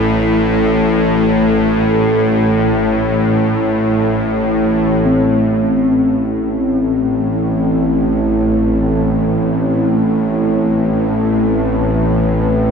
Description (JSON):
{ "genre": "dark ambient drone", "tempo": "free time", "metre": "none", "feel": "none", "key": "A minor", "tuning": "A4 = 440 Hz", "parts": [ { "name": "dark analog pad", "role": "sustained chords", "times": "0.0-12.7 s", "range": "A3 to B4", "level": "-22 LUFS", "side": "right 2 dB", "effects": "chorus" }, { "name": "bowed-like drone", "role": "drone", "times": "0.0-12.7 s", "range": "A1 to A2", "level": "-14 LUFS", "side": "equal", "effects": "built-in reverb" }, { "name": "bronze singing bowl", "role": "texture", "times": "5.1-12.7 s", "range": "C4", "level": "-19 LUFS", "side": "left 3 dB", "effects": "stereo widening" } ], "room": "wet huge ambient reverb, RT60 7.3 s", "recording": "none", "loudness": "-12 LUFS", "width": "side -6 dB against mid", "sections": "0.0-5.0 A section; 5.0-12.7 B section", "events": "fade-out on analog synth pad 0.0-5.0; fade-in on analog synth pad 5.0-12.7", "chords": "0.0 A5; 5.0 Am", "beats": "free time" }